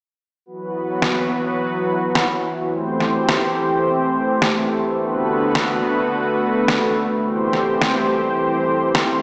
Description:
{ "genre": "synthwave", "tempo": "106 BPM", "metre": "4/4", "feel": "straight", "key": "A dorian", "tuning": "A4 = 439 Hz", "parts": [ { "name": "lush unison pad", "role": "sustained chords", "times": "0.5-9.2 s", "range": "C2 to C5", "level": "-21 LUFS", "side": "equal", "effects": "chorus" }, { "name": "electronic snare drum", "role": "drums", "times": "1.0-9.1 s", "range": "none", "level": "-25 LUFS", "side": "equal", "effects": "overdrive" } ], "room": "wet lush hall reverb, RT60 2.0 s", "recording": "big arena sound, small speaker sound", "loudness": "-20 LUFS", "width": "mono", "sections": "0.5-9.2 A section", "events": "none", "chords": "0.5 Esus2; 2.7 Am7; 5.0 Bm7; 7.2 Am7/C", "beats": "| 0.46 1.02 1.59 2.15 | 2.72 3.29 3.85 4.42 | 4.99 5.55 6.12 6.68 | 7.25 7.82 8.38 8.95" }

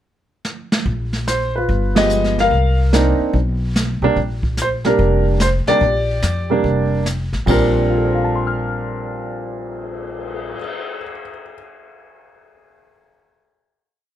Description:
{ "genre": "jazz piano trio", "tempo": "145 BPM", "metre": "4/4", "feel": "swing 65% on 8ths", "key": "Bb major", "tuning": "A4 = 440 Hz", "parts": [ { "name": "jazz brush drum kit", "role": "drums", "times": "0.4-10.7 s", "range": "brushed snare drum, crash cymbal, cymbal swell, hi-hat, kick drum, ride cymbal, snare drum", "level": "-23 LUFS", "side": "right 1 dB", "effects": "none" }, { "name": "upright bass", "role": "bass", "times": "0.9-10.5 s", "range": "F1 to F2", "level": "-20 LUFS", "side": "left 1 dB", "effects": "none" }, { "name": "warm concert grand piano", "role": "melody", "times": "1.3-11.5 s", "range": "Bb2 to F6", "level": "-18 LUFS", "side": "right 1 dB", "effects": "none" } ], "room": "little or no reverb", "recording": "close, detailed microphones", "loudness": "-16 LUFS", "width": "side -11 dB against mid", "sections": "0.0-0.9 pickup bar; 0.9-7.5 A section; 7.5-10.8 final chord", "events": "drum fill 0.4-0.9; band accent 1.9", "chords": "0.0 N.C.; 0.9 Bb5; 1.7 G7b9; 2.5 Cm9; 3.3 N.C.; 4.2 Bb69", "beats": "0.03 0.45 | 0.86 1.27 1.69 2.10 | 2.52 2.93 3.34 3.76 | 4.17 4.58 4.99 5.41 | 5.82 6.23 6.65 7.06 | 7.47 7.89 8.30 8.72 | 9.13 9.55 9.97 10.38" }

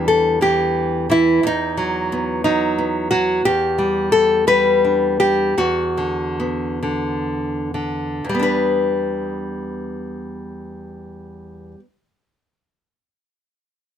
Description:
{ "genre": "folk, solo fingerstyle acoustic guitar", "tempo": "39-60 BPM (dotted quarters)", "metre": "6/8", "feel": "rubato", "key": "E minor", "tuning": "A4 = 440 Hz", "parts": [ { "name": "nylon-string guitar", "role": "solo", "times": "0.0-11.9 s", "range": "E2 to B4", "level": "-17 LUFS", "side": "left 1 dB", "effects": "none" } ], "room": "light reverb", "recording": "close, detailed microphones", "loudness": "-16 LUFS", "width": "side -9 dB against mid", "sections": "0.0-8.2 A section; 8.2-14.0 B section", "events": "slowing down 3.4-8.2", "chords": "0.0 Em7; 1.4 B/E; 3.4 Em7; 5.6 D6/E; 8.2 Em7", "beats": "0.41 | 1.43 2.44 | 3.44 4.47 | 5.57 6.81 | 8.23 9.75 | 11.22" }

